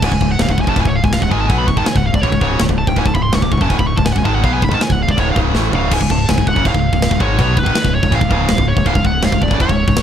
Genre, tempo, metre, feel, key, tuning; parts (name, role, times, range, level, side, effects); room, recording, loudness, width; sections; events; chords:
heavy metal; 163 BPM; 4/4; straight; C# phrygian dominant; A4 = 440 Hz
high-gain lead guitar; melody; 0.0-10.0 s; B4 to D6; -20 LUFS; equal; distortion, ping-pong delay
distorted electric guitar; riff; 0.0-10.0 s; C#2 to B3; -20 LUFS; left 11 dB; overdrive
distorted electric guitar; riff; 0.0-10.0 s; C#2 to B3; -21 LUFS; right 12 dB; overdrive
growling fingered electric bass; bass; 0.0-10.0 s; C#1 to B1; -19 LUFS; equal; overdrive
tight metal drum kit; drums; 0.0-10.0 s; china cymbal, crash cymbal, kick drum, snare drum, toms; -17 LUFS; equal
little or no reverb; -12 LUFS; side -9 dB against mid
0.0-5.9 A section; 5.9-10.0 B section
lead electric guitar solo 0.0-5.9; drum fill 5.5-5.9
0.0 C#5; 5.9 C#